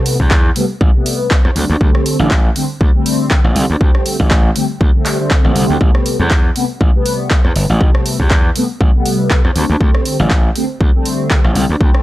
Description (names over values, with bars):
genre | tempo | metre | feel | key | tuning
filtered disco house | 120 BPM | 4/4 | swing 56% on 16ths | unclear | A4 = 440 Hz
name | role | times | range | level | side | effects
mellow synth brass | accompaniment | 0.0-12.0 s | C3 to D4 | -18 LUFS | left 1 dB | chorus, phaser, sidechain pumping
house drum kit | drums | 0.1-12.0 s | handclaps, hi-hat, rim click | -21 LUFS | equal | overdrive, sidechain pumping on hats, sidechain pumping on cymbals
gritty slap bass | bass | 0.2-11.9 s | G1 to E2 | -15 LUFS | equal | overdrive, transformer saturation, sidechain pumping
electronic kick drum | drums | 0.2-11.9 s | none | -12 LUFS | equal | overdrive
room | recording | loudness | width
digital ambience | dry, gritty hardware recording | -11 LUFS | side -16 dB against mid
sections
0.0-12.0 A section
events
none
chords
0.0 Am9; 1.6 D7sus4; 5.8 Am9; 9.6 D7sus4